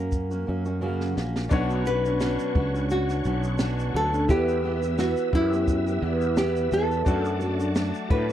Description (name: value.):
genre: acoustic pop.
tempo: 87 BPM.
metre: 4/4.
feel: swing 55% on 16ths.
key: B minor.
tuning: A4 = 440 Hz.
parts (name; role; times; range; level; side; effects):
nylon-string guitar; melody; 0.0-8.3 s; E4 to B4; -28 LUFS; left 1 dB; none.
fingerpicked steel-string acoustic guitar; accompaniment; 0.0-8.3 s; F#2 to G4; -28 LUFS; right 2 dB; none.
sustaining fretless electric bass; bass; 0.0-8.3 s; A#1 to A2; -27 LUFS; equal; ensemble chorus.
compact cocktail drum kit; drums; 0.1-8.3 s; kick drum, shaker, snare drum; -26 LUFS; equal; none.
clear baby grand piano; accompaniment; 1.5-8.3 s; D4 to F#5; -34 LUFS; left 4 dB; none.
bright tonewheel organ; sustained chords; 1.5-8.3 s; B4 to E6; -38 LUFS; equal; chorus vibrato, fast rotary speaker.
room: little or no reverb.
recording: dry, close 1970s-style studio recording.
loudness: -22 LUFS.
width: side -11 dB against mid.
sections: 0.0-1.5 A section; 1.5-8.3 B section.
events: drum fill 0.8-1.5.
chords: 0.0 F#; 1.5 Bmadd9; 4.3 Em; 7.1 D/F#.